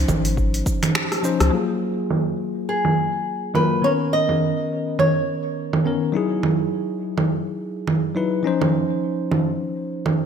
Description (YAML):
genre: sunset chillout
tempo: 104 BPM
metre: 4/4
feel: swing 57% on 16ths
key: F# major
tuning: A4 = 440 Hz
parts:
  - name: bell-like tine electric piano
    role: accompaniment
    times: 0.0-10.3 s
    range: D#3 to B#4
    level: -23 LUFS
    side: moving between left 6 dB and right 2 dB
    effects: auto-pan, low-pass filter, tape echo
  - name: round analog bass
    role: bass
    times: 0.0-1.5 s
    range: G#1 to C#2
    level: -21 LUFS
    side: equal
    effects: none
  - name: deep house drum kit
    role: drums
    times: 0.1-10.2 s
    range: cabasa, congas, finger snaps, hi-hat, rim click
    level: -22 LUFS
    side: right 3 dB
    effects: overdrive, low-pass filter on perc, low-pass filter on hats, low-pass filter on snare, low-pass filter on room
  - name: electronic kick drum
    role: drums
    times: 0.1-0.8 s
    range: none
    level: -24 LUFS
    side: equal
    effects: overdrive
  - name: flamenco guitar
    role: melody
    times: 2.7-5.8 s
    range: G#4 to D#5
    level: -22 LUFS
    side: equal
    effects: tape echo
room: light reverb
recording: none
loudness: -19 LUFS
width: side -7 dB against mid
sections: 0.0-1.5 A section; 1.5-10.3 B section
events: filter sweep on tine electric piano 0.0-1.5; drum fill 1.0-1.5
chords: 0.0 C#maj9; 1.5 F#maj9; 3.8 Bmaj9; 6.1 Emaj9; 8.5 C#maj9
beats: 0.37 0.95 | 1.53 2.10 2.68 3.26 | 3.83 4.41 4.99 5.57 | 6.14 6.72 7.30 7.87 | 8.45 9.03 9.61 10.18